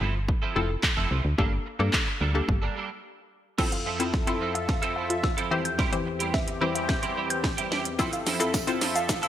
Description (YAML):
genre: dance-pop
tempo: 109 BPM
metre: 4/4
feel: straight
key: F major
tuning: A4 = 440 Hz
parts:
  - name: hollow square pluck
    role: accompaniment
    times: 0.0-9.3 s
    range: E3 to C5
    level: -30 LUFS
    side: left 4 dB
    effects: chorus, sidechain pumping
  - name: twelve-string electric guitar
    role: riff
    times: 0.0-9.3 s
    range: F3 to A4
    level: -32 LUFS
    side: right 6 dB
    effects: ensemble chorus
  - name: solid FM bass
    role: bass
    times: 0.0-2.7 s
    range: F1 to G2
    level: -27 LUFS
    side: equal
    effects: sidechain pumping
  - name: house drum kit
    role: drums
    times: 0.3-9.3 s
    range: crash cymbal, handclaps, hi-hat, kick drum, shaker, snare drum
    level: -27 LUFS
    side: equal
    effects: none
  - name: sweeping resonant pad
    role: sustained chords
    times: 3.6-9.3 s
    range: E2 to E5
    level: -32 LUFS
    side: left 1 dB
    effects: chorus, sidechain pumping
  - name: warbly dusty pluck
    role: arpeggios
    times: 3.6-9.3 s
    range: F4 to G6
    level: -33 LUFS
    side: equal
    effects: chorus, sidechain pumping, digital delay
  - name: tambourine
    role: percussion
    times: 8.5-8.7 s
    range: none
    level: -40 LUFS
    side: right 6 dB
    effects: none
room: moderate lush hall reverb, RT60 2.1 s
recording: bright 1980s-style digital production, high-pass filter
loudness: -24 LUFS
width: side -11 dB against mid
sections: 0.0-3.6 A section; 3.6-9.3 B section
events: break 3.0-3.6; build-up 3.6-9.3; drum fill 3.6-9.3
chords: 0.0 Fmaj7; 1.4 Gmadd9; 3.6 Fmaj7; 5.5 C/E; 8.0 Fmaj7